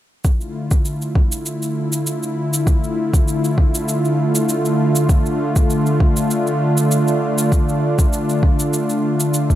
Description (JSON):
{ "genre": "organic downtempo", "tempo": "99 BPM", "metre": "4/4", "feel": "swing 54% on 16ths", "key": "D minor", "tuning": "A4 = 439 Hz", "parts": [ { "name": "warm analog pad", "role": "sustained chords", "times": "0.2-9.6 s", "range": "D3 to F4", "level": "-18 LUFS", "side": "equal", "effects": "chorus, sidechain pumping" }, { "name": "electronic kick drum", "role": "drums", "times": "0.2-9.6 s", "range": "none", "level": "-15 LUFS", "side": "equal", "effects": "overdrive" }, { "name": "shaker", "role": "drums", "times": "0.2-9.6 s", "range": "none", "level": "-26 LUFS", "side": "right 1 dB", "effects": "overdrive" } ], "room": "light reverb", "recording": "none", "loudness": "-15 LUFS", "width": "side -13 dB against mid", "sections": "0.2-9.6 A section", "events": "none", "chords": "0.2 Dmadd9", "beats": "| 0.25 0.85 1.46 2.06 | 2.67 3.28 3.88 4.49 | 5.09 5.70 6.31 6.91 | 7.52 8.12 8.73 9.34" }